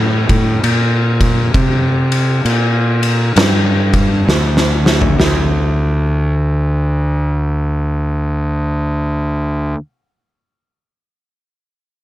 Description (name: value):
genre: stoner and doom metal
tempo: 66 BPM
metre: 4/4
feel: swing 63% on 8ths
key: unclear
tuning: A4 = 441 Hz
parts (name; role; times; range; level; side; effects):
- fuzz fingered electric bass; bass; 0.0-9.7 s; D2 to C3; -14 LUFS; equal; overdrive
- oversized low-tuned drum kit; drums; 0.3-5.5 s; kick drum, ride cymbal, snare drum, toms; -15 LUFS; equal; none
room: little or no reverb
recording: none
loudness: -13 LUFS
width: side -14 dB against mid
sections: 0.0-5.2 A section; 5.2-8.8 B section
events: drum fill 4.3-5.2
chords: none